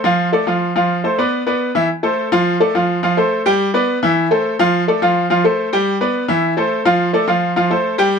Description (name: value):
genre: latin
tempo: 212 BPM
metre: 4/4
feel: straight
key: unclear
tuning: A4 = 440 Hz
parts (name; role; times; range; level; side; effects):
- bright upright piano; solo; 0.0-8.2 s; E3 to G5; -14 LUFS; equal; none
room: moderate small room reverb, RT60 0.5 s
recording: none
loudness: -14 LUFS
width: side -6 dB against mid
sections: 0.0-1.9 A section; 1.9-8.2 B section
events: none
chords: 0.2 Dm; 0.8 F; 1.3 Bmadd11; 1.9 Am; 2.5 Dm; 3.0 F; 3.6 G; 4.2 Am; 4.7 Dm; 5.3 F; 5.9 G; 6.4 Am; 7.0 Dm; 7.6 F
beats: 0.18 0.47 | 0.75 1.04 1.32 1.61 | 1.89 2.17 2.46 2.74 | 3.03 3.31 3.60 3.88 | 4.16 4.45 4.73 5.01 | 5.30 5.58 5.86 6.15 | 6.43 6.71 7.00 7.28 | 7.56 7.85 8.13